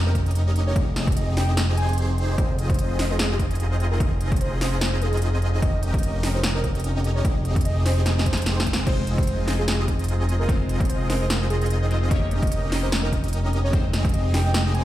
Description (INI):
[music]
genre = future bass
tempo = 148 BPM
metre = 4/4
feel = swing 55% on 16ths, half-time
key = F minor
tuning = A4 = 440 Hz
[part]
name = dense compressed supersaw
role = riff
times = 0.0-14.8 s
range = C4 to Eb5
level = -30 LUFS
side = right 1 dB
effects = sidechain pumping, tape echo
[part]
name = fat analog bass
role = bass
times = 0.0-14.8 s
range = F1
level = -22 LUFS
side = equal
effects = sidechain pumping
[part]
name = soft octave-layered synth lead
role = melody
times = 0.1-14.8 s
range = G4 to Ab5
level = -32 LUFS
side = right 1 dB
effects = chorus, sidechain pumping, digital delay
[part]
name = electronic kick drum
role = drums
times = 0.1-14.1 s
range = none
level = -23 LUFS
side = equal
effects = none
[part]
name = big-room dance drum kit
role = drums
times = 0.2-14.8 s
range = crash cymbal, hi-hat, snare drum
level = -28 LUFS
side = equal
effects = none
[part]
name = glassy digital keys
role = accompaniment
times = 8.8-14.8 s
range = Ab3 to G5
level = -32 LUFS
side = left 3 dB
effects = chorus, sidechain pumping, tape echo
[sound]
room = digital ambience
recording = played on a big sound system in a bare room, stone room reverb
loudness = -20 LUFS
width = side -14 dB against mid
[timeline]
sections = 0.0-14.8 A section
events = drum fill 8.1-8.9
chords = 0.0 Eb7/F; 0.8 Abmaj7/F; 2.4 Fm7; 5.6 Eb7/F; 7.2 Abmaj7/F; 8.9 Fm7; 12.1 Eb7/F; 13.7 Abmaj7/F